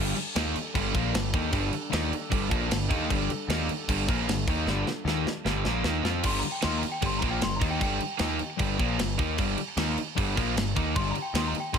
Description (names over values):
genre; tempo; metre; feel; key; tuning
hard rock; 153 BPM; 4/4; straight; G minor; A4 = 441 Hz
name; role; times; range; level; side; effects
chorused pulse-width pad; sustained chords; 0.0-6.2 s; G3 to A4; -41 LUFS; right 1 dB; plate reverb
cranked stack guitar; riff; 0.0-11.8 s; G2 to F4; -32 LUFS; right 15 dB; overdrive
sludgy distorted guitar; riff; 0.0-11.8 s; G2 to F4; -32 LUFS; left 12 dB; overdrive
fuzz picked electric bass; bass; 0.0-11.8 s; G1 to F2; -32 LUFS; equal; overdrive
tight metal drum kit; drums; 0.2-11.8 s; crash cymbal, kick drum, snare drum; -30 LUFS; equal; none
worn celesta; melody; 6.3-11.8 s; G5 to C6; -34 LUFS; left 2 dB; plate reverb, analog delay
room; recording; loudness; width
light reverb; none; -25 LUFS; side -7 dB against mid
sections
0.0-6.2 A section; 6.2-11.8 B section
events
drum fill 4.7-6.2; celesta solo 6.2-11.8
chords
0.0 Gm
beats
0.35 0.75 1.14 | 1.53 1.93 2.32 2.71 | 3.10 3.50 3.89 4.28 | 4.67 5.06 5.46 5.85 | 6.24 6.63 7.03 7.42 | 7.81 8.21 8.60 8.99 | 9.38 9.78 10.17 10.56 | 10.95 11.34 11.74